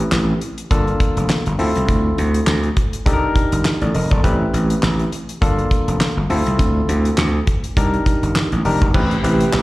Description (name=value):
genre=early-eighties boogie funk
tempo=102 BPM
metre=4/4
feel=swing 56% on 16ths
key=A phrygian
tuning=A4 = 441 Hz
part: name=barky tine electric piano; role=accompaniment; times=0.0-9.6 s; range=Bb3 to Eb5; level=-21 LUFS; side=left 1 dB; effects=overdrive, slapback echo
part: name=gritty slap bass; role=bass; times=0.0-9.6 s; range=F1 to D2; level=-18 LUFS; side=equal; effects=overdrive
part: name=damped 70s drum kit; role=drums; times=0.1-9.6 s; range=crash cymbal, handclaps, hi-hat, kick drum, snare drum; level=-19 LUFS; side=equal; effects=none
part: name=chorused pulse-width pad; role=sustained chords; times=8.9-9.6 s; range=C3 to B4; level=-22 LUFS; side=right 2 dB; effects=none
room=little or no reverb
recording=live gig heard through the venue's PA, recital hall reverb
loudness=-15 LUFS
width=side -18 dB against mid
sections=0.0-8.9 A section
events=none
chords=0.0 Am9; 0.7 Gm9; 1.6 Dm9; 3.1 Cm9; 4.2 Am9; 5.4 Gm9; 6.3 Dm9; 7.8 Cm9; 8.9 Am9